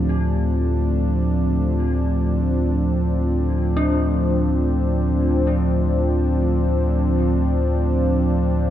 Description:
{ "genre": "dark ambient drone", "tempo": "free time", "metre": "none", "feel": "none", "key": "unclear", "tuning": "A4 = 442 Hz", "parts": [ { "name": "sweeping resonant pad", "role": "sustained chords", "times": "0.0-8.7 s", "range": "F3 to D4", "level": "-21 LUFS", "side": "right 2 dB", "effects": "chorus" }, { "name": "dark detuned synth bell", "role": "arpeggios", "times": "0.0-8.7 s", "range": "D4 to G4", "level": "-30 LUFS", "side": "left 2 dB", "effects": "chorus, dub echo" }, { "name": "deep rumbling drone", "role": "drone", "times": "0.0-8.7 s", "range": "D2 to A2", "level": "-20 LUFS", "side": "left 1 dB", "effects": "built-in reverb" } ], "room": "moderate spring reverb, RT60 2.4 s", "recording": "echo-heavy mix, small room ambience", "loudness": "-18 LUFS", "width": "side -11 dB against mid", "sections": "0.0-8.7 A section", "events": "none", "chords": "0.0 Dm" }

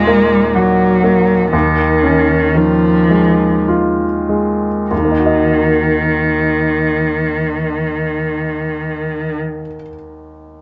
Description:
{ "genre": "neoclassical piano and strings", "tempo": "48-64 BPM", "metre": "3/4", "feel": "rubato", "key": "Eb minor", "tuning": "A4 = 440 Hz", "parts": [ { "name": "rich cello", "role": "second line", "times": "0.0-9.4 s", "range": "Eb3 to Ab3", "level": "-17 LUFS", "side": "equal", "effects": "none" }, { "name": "clear baby grand piano", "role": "accompaniment", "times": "0.0-10.6 s", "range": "Eb2 to Eb5", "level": "-18 LUFS", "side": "equal", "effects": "none" } ], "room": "light reverb", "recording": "nothing above 7.9 kHz", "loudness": "-14 LUFS", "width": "mono", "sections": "0.0-4.9 A section; 4.9-8.6 B section", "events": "slowing down 0.0-4.9", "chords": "0.0 Ebm; 1.5 Dbadd9/Eb; 4.9 Ebm" }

